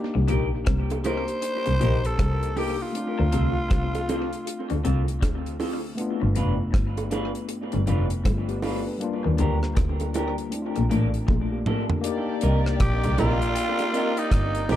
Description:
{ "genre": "lovers rock reggae", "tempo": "79 BPM", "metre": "4/4", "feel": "swing 62% on 16ths", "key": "C dorian", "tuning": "A4 = 440 Hz", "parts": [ { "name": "mellow tine electric piano", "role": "accompaniment", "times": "0.0-14.8 s", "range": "G3 to D5", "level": "-31 LUFS", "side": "left 3 dB", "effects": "medium stereo tremolo" }, { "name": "electric guitar through a small old amp", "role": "riff", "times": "0.1-11.5 s", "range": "F2 to Eb3", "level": "-33 LUFS", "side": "left 8 dB", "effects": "phaser, tape echo" }, { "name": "warm double bass", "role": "bass", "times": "0.2-14.8 s", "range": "F1 to Eb2", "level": "-25 LUFS", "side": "equal", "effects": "none" }, { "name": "electric guitar through a small old amp", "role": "stabs", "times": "0.3-14.8 s", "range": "Bb3 to B4", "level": "-31 LUFS", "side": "equal", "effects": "tape echo" }, { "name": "deep reggae drum kit", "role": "drums", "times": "0.3-14.8 s", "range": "hi-hat, kick drum, rim click, toms", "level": "-27 LUFS", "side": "equal", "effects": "tape echo" }, { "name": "bongos", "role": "percussion", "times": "0.9-14.8 s", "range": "none", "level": "-34 LUFS", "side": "right 4 dB", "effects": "tape echo" }, { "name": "growling tenor saxophone", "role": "melody", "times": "1.1-5.1, 12.8-14.8 s", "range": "Eb4 to C5", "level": "-28 LUFS", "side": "equal", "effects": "tape echo" }, { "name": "warm studio violin section", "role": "second line", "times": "12.0-14.8 s", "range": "Bb3 to D5", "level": "-32 LUFS", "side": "left 1 dB", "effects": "none" } ], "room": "light reverb, studio reverb", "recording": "dark, warm production", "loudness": "-22 LUFS", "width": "side -12 dB against mid", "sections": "0.0-12.0 A section; 12.0-14.8 B section", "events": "drum fill 11.3-12.0", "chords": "0.0 Cm7; 2.9 Dm7; 6.0 G7; 9.0 Ebmaj7; 10.5 Bbmaj7; 12.0 Cm7" }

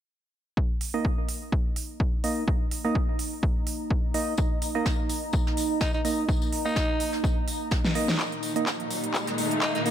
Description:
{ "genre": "bass house", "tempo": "126 BPM", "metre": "4/4", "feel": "swing 55% on 16ths", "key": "unclear", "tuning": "A4 = 440 Hz", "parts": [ { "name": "electronic kick drum", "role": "drums", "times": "0.6-9.7 s", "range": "none", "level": "-26 LUFS", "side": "equal", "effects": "high-pass filter on kick" }, { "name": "warbly tape-like pad", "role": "texture", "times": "2.3-9.9 s", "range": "Bb3 to Bb5", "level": "-33 LUFS", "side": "right 2 dB", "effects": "chorus, built-in reverb, sidechain pumping" }, { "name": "big-room dance drum kit", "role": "drums", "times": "0.8-9.9 s", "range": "handclaps, hi-hat, snare drum", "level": "-31 LUFS", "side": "right 1 dB", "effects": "high-pass filter on hats, high-pass filter on snare" }, { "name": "percussive organ stab", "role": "stabs", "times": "0.9-9.9 s", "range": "Bb3 to Eb5", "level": "-30 LUFS", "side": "right 2 dB", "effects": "chorus, sidechain pumping, tape echo" }, { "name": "tambourine and snare drum", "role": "drums", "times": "4.4-9.9 s", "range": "none", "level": "-37 LUFS", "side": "left 1 dB", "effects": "high-pass filter on snare, sidechain pumping on perc, high-pass filter on perc, high-pass filter on room" }, { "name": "raspy alto saxophone", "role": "melody", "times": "5.8-9.8 s", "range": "Eb4", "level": "-32 LUFS", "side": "equal", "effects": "tape echo" }, { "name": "warm studio string section", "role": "sustained chords", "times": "8.2-9.9 s", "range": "Bb2 to Eb4", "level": "-32 LUFS", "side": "left 3 dB", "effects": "sidechain pumping" }, { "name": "riser", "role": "sound effects", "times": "8.7-9.9 s", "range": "none", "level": "-32 LUFS", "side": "equal", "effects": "none" } ], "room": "light reverb, studio reverb", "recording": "none", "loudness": "-24 LUFS", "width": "side -10 dB against mid", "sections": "0.6-8.2 A section; 8.2-9.9 B section", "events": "drum fill 7.8-8.2, 8.2-9.9; build-up 8.2-9.9; riser 8.7-9.9", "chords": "0.6 Eb5" }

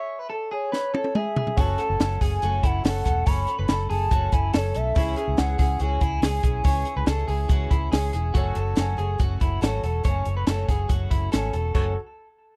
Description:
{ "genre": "jangly indie pop", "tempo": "142 BPM", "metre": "4/4", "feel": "straight", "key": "F# minor", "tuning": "A4 = 439 Hz", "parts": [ { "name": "hollow clarinet-like synth lead", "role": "melody", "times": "0.0-7.9 s", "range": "C#5 to B5", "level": "-31 LUFS", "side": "equal", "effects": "chorus" }, { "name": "electric guitar at the edge of break-up", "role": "arpeggios", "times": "0.0-11.9 s", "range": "E4 to C#5", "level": "-33 LUFS", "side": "equal", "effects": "warbly pitch drift" }, { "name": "compact cocktail drum kit", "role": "drums", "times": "0.7-11.8 s", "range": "crash cymbal, hi-hat, kick drum, snare drum, toms", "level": "-26 LUFS", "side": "equal", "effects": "none" }, { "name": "picked twelve-string acoustic guitar", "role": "accompaniment", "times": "1.6-11.9 s", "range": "F#2 to A4", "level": "-37 LUFS", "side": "equal", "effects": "none" }, { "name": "warm upright piano", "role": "accompaniment", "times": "1.6-11.9 s", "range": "C#4 to C#5", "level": "-41 LUFS", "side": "equal", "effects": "none" }, { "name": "vintage muted fingered electric bass", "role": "bass", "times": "1.6-11.9 s", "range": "E1 to C#2", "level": "-28 LUFS", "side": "equal", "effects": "none" } ], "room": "little or no reverb", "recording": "dry, close 1970s-style studio recording", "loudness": "-24 LUFS", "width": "mono", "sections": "0.0-8.4 A section; 8.4-11.8 B section", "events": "drum fill 0.7-1.6", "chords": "0.0 F#m" }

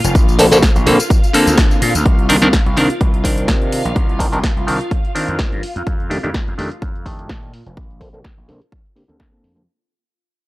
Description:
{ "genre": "filtered disco house", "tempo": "126 BPM", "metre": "4/4", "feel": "swing 54% on 16ths", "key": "C dorian", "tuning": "A4 = 439 Hz", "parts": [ { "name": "phased string machine", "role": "sustained chords", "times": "0.0-9.7 s", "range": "F4 to F5", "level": "-26 LUFS", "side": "left 1 dB", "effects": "ensemble chorus, phaser, sidechain pumping, low-pass filter" }, { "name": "gritty slap bass", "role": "bass", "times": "0.0-9.7 s", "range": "F1 to C3", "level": "-20 LUFS", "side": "equal", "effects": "overdrive, sidechain pumping, low-pass filter" }, { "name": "punchy analog drum machine", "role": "drums", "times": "0.0-9.7 s", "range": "hi-hat, snare drum, tambourine, woodblock", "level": "-22 LUFS", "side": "equal", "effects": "overdrive, sidechain pumping on hats, low-pass filter on hats, sidechain pumping on perc, low-pass filter on perc, low-pass filter on snare" }, { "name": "electronic kick drum", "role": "drums", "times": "0.1-9.3 s", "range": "none", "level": "-16 LUFS", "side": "equal", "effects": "overdrive" }, { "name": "clav", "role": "accompaniment", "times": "0.4-9.6 s", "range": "D3 to Bb4", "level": "-15 LUFS", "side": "equal", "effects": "phaser, sidechain pumping, low-pass filter" } ], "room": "little or no reverb", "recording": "dry, gritty hardware recording", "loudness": "-13 LUFS", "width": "side -19 dB against mid", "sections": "0.0-2.1 A section; 2.1-9.7 B section", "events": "drop 0.0-2.1; band accent 1.6; fade-out 2.1-9.7; filter sweep 2.1-9.7", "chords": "0.0 Bbmaj9; 2.1 Cm9; 5.6 F13; 7.5 Bbmaj9" }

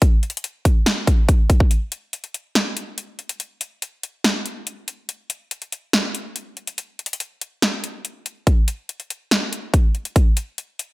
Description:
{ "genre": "hip hop", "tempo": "142 BPM", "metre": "4/4", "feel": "half-time", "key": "none", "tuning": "none", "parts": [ { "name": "big-room dance drum kit", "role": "drums", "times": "0.0-10.9 s", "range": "hi-hat, kick drum, snare drum", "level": "-18 LUFS", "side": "equal", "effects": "none" } ], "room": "light reverb", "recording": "none", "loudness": "-19 LUFS", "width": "side -20 dB against mid", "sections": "0.0-10.9 A section", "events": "break 1.7-8.5", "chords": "none" }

